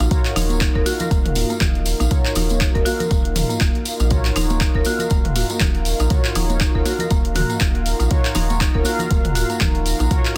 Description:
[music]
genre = afro house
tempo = 120 BPM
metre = 4/4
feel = swing 57% on 16ths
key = Eb minor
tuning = A4 = 437 Hz
[part]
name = warm analog pad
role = sustained chords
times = 0.0-10.4 s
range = Eb4 to Bb5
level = -33 LUFS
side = equal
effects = chorus, sidechain pumping
[part]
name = buzzing marimba with medium hard mallets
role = arpeggios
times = 0.0-10.1 s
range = Bb3 to Bb4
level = -29 LUFS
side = equal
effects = sidechain pumping, digital delay
[part]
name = mellow synth brass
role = stabs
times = 0.0-10.4 s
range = F4 to F5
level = -30 LUFS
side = equal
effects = chorus, sidechain pumping, digital delay
[part]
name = warm sub bass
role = bass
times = 0.0-10.1 s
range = Eb1 to Bb1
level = -24 LUFS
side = equal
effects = sidechain pumping
[part]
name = deep house drum kit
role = drums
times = 0.0-10.3 s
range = handclaps, hi-hat, toms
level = -28 LUFS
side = equal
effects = studio reverb
[part]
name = congas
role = percussion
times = 0.0-10.1 s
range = none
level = -32 LUFS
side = equal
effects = none
[part]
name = tambourine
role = percussion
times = 0.0-10.2 s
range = none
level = -33 LUFS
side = equal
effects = none
[part]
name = electronic kick drum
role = drums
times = 0.1-10.2 s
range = none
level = -21 LUFS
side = equal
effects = overdrive, studio reverb
[sound]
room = little or no reverb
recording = dense, heavily limited modern master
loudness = -19 LUFS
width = mono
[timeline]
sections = 0.0-10.4 A section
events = none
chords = 0.0 Ebm7

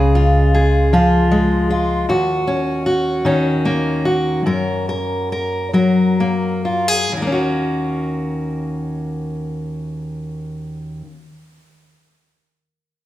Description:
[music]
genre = acoustic folk duo or small band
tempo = 42-52 BPM (dotted quarters)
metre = 6/8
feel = straight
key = Eb minor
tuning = A4 = 440 Hz
[part]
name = fingerpicked steel-string acoustic guitar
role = accompaniment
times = 0.0-11.2 s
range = Eb2 to Bb4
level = -16 LUFS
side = left 1 dB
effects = none
[part]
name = upright bass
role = bass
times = 0.0-2.0 s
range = Db2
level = -16 LUFS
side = right 1 dB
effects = none
[sound]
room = moderate recital hall reverb, RT60 1.6 s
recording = none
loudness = -16 LUFS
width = side -14 dB against mid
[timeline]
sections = 0.0-7.1 A section; 7.1-10.0 B section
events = slowing down 2.1-7.1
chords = 0.0 Db; 2.1 Ebm7; 4.5 Gb; 7.1 Ebm7

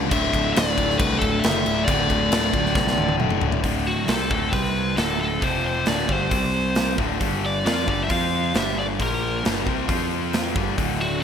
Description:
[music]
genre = hard rock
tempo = 134 BPM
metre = 4/4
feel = straight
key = unclear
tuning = A4 = 435 Hz
[part]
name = hollow soft pad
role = sustained chords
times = 0.0-3.6, 10.8-11.2 s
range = G3 to E5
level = -35 LUFS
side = left 2 dB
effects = none
[part]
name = distorted electric guitar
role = riff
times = 0.0-11.2 s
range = D2 to F4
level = -26 LUFS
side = left 13 dB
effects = overdrive
[part]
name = sludgy distorted guitar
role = riff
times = 0.0-11.2 s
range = D2 to F4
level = -28 LUFS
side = right 11 dB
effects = overdrive
[part]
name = modern bright picked electric bass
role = bass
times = 0.0-11.2 s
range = D1 to F2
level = -28 LUFS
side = equal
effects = none
[part]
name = biting lead guitar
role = melody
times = 0.1-11.2 s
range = F#4 to F5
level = -26 LUFS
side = equal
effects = overdrive, ping-pong delay
[part]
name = big rock drum kit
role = drums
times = 0.1-10.9 s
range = crash cymbal, hi-hat, kick drum, snare drum, toms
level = -25 LUFS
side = equal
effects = none
[sound]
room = light reverb, small room reverb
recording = bright 1980s-style digital production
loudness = -19 LUFS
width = side -8 dB against mid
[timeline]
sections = 0.0-3.6 A section; 3.6-11.2 B section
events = drum fill 2.8-3.6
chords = 0.1 D5; 4.5 C5; 5.0 D5; 5.4 F5; 5.9 D5; 6.3 C5; 7.0 D5; 7.2 G5; 8.1 F5; 8.6 G5; 9.0 Bb5; 9.4 G5; 9.9 F5; 10.6 G5

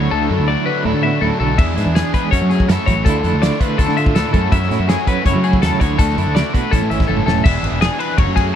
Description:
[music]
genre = math rock and midwest emo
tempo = 164 BPM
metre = 4/4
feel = straight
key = unclear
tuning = A4 = 438 Hz
[part]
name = clean electric guitar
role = accompaniment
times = 0.0-8.2 s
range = E2 to G#4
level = -22 LUFS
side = right 7 dB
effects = tremolo
[part]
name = twelve-string electric guitar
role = arpeggios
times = 0.0-8.5 s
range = G#4 to E5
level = -21 LUFS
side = left 10 dB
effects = wide subtle chorus
[part]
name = overdriven semi-hollow guitar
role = riff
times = 0.0-8.5 s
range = A2 to G#4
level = -22 LUFS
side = right 1 dB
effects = none
[part]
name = growling fingered electric bass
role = bass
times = 0.0-8.5 s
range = E1 to F#3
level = -19 LUFS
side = equal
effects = overdrive
[part]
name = loose indie drum kit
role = drums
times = 1.6-8.5 s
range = crash cymbal, hi-hat, kick drum, ride cymbal, snare drum, toms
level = -17 LUFS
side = equal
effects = none
[sound]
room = little or no reverb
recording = dry, close 1970s-style studio recording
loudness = -14 LUFS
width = side -9 dB against mid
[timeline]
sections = 0.0-7.5 A section; 7.5-8.6 B section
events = drum fill 7.1-7.5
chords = 0.0 Dmaj9; 1.6 E7; 2.3 F#m9; 3.1 Dmadd9; 4.3 F#m9; 5.8 Dmaj9; 6.7 A6; 7.5 E7

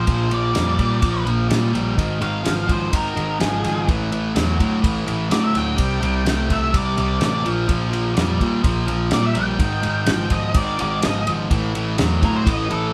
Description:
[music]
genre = classic rock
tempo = 126 BPM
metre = 4/4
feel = straight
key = unclear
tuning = A4 = 438 Hz
[part]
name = octave-fuzz lead guitar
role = melody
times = 0.0-12.9 s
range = Ab4 to G5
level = -27 LUFS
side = equal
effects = distortion
[part]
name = overdriven electric guitar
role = riff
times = 0.0-12.9 s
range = Ab2 to A3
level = -29 LUFS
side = equal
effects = none
[part]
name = sludgy distorted guitar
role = riff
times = 0.0-12.9 s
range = Ab2 to A3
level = -27 LUFS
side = equal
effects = overdrive
[part]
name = overdriven picked electric bass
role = bass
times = 0.0-12.9 s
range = Ab1 to Bb2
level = -25 LUFS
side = equal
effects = none
[part]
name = damped 70s drum kit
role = drums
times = 0.1-12.8 s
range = kick drum, ride cymbal, snare drum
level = -26 LUFS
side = equal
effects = none
[sound]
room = moderate studio reverb, RT60 0.6 s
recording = band playing live in one room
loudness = -20 LUFS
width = mono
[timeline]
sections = 0.0-12.9 A section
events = lead electric guitar solo 0.0-12.9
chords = 0.0 Bb; 2.0 Absus2; 3.9 A5; 5.8 C5; 7.5 Bb5; 9.6 Ab5; 11.5 A5

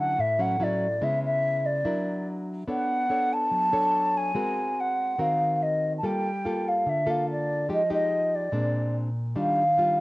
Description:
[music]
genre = bossa nova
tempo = 144 BPM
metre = 4/4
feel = straight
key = unclear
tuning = A4 = 441 Hz
[part]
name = breathy mellow concert flute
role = melody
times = 0.0-10.0 s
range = D5 to A5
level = -24 LUFS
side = equal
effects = cassette tape
[part]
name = nylon-string guitar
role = accompaniment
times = 0.0-10.0 s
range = A2 to C#5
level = -29 LUFS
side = equal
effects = cassette tape
[sound]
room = moderate small room reverb, RT60 0.5 s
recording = home recording on cassette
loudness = -23 LUFS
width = side -20 dB against mid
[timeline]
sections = 0.0-10.0 A section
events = none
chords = 0.0 Dmaj9; 1.0 C#m7; 1.8 F#aug7; 2.7 Bm9; 4.4 G#9; 6.0 Gm9; 7.7 Fm9; 8.5 Bb9; 9.4 Ebmaj9

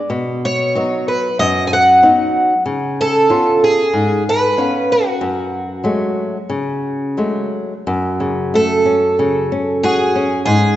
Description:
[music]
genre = fado-style ballad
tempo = 93 BPM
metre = 4/4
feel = uneven beats, rubato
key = F# harmonic minor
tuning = A4 = 440 Hz
[part]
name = picked twelve-string acoustic guitar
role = melody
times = 0.0-10.8 s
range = F#4 to G#5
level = -14 LUFS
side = right 1 dB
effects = none
[part]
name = flamenco guitar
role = accompaniment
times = 0.1-10.8 s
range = F#2 to E#5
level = -18 LUFS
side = left 1 dB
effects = none
[sound]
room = wet concert hall reverb, RT60 1.9 s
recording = nothing above 7.8 kHz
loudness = -14 LUFS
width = side -13 dB against mid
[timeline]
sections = 0.0-7.9 A section; 7.9-10.8 A section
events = none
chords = 0.1 B; 2.7 C#7; 5.2 F#madd9; 7.9 F#m

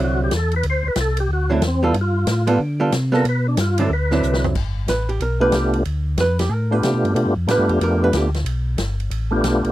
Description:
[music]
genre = soul jazz organ trio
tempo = 184 BPM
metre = 4/4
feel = swing 63% on 8ths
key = G mixolydian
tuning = A4 = 440 Hz
[part]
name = percussive tonewheel organ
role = melody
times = 0.0-9.7 s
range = A3 to C5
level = -21 LUFS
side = equal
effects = slow rotary speaker, overdrive, chorus vibrato
[part]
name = archtop guitar, miked and amplified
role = accompaniment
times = 0.0-8.3 s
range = D3 to B4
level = -20 LUFS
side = right 2 dB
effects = none
[part]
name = mellow tonewheel organ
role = bass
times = 0.0-9.7 s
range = G1 to D3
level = -20 LUFS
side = equal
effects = slow rotary speaker
[part]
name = swinging big-band drum kit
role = drums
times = 0.3-9.7 s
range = crash cymbal, hi-hat, kick drum, ride cymbal, snare drum, toms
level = -27 LUFS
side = left 1 dB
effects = none
[sound]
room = little or no reverb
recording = dry, close 1970s-style studio recording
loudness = -17 LUFS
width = side -15 dB against mid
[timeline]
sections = 0.0-4.6 A section; 4.6-9.7 A section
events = tonewheel organ solo 0.0-4.6; drum fill 4.2-4.6; hollow-body jazz guitar solo 4.6-9.7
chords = 0.0 D9; 1.9 G9; 3.9 D9; 4.6 G9

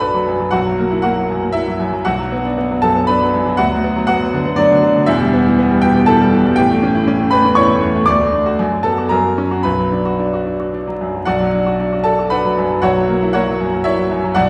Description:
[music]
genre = classical, virtuoso piano study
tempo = 118 BPM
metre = 3/4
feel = rubato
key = B minor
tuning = A4 = 440 Hz
[part]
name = bright concert grand piano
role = solo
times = 0.0-14.5 s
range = E1 to D6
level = -15 LUFS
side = equal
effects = none
[sound]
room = wet recital hall reverb, RT60 1.4 s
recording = heard from further back in the room, vinyl crackle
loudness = -15 LUFS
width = mono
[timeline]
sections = 0.0-11.3 A section; 11.3-14.5 B section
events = none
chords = 0.0 Bm; 0.5 F#7/B; 2.1 Bm; 3.6 Bm/D; 5.1 Em; 6.6 A7; 8.1 D; 8.6 Bm/F#; 9.1 F#; 9.7 Bm; 12.8 F#7/B

